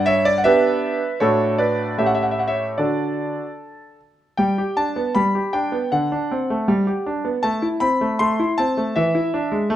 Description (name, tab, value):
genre	classical-period piano sonatina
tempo	79 BPM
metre	2/4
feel	rubato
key	D major, G major from 4.4 s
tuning	A4 = 440 Hz
part	bright concert grand piano	solo	0.0-9.8 s	G2 to C6	-18 LUFS	equal	none
room	light reverb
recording	close, detailed microphones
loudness	-18 LUFS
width	side -12 dB against mid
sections	0.0-4.4 A section; 4.4-9.8 B section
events	none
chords	0.0 Em7/G; 1.2 D/A; 2.0 A7; 2.8 D; 4.4 G; 5.9 D7; 6.7 G; 7.4 Am; 9.0 E7